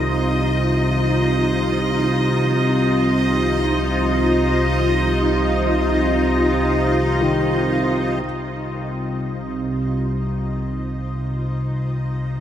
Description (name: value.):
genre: dark ambient drone.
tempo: free time.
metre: none.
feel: none.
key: C minor.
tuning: A4 = 439 Hz.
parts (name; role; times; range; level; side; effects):
granular cloud pad; sustained chords; 0.0-12.4 s; Eb4 to C5; -22 LUFS; equal; built-in reverb.
warm grand piano; arpeggios; 0.0-8.3 s; Eb3; -30 LUFS; left 3 dB; diffuse ambient delay.
analog drone; drone; 0.0-12.4 s; C2 to C3; -20 LUFS; equal; chorus.
bubbling stepped-filter texture; texture; 0.0-12.4 s; Eb5; -26 LUFS; right 1 dB; chorus, built-in reverb.
room: wet huge ambient reverb, RT60 8.5 s.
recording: none.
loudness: -17 LUFS.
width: side -10 dB against mid.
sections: 0.0-8.2 A section; 8.2-12.4 B section.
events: fade-in on synth drone 0.0-8.2.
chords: 0.0 Cm.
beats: free time.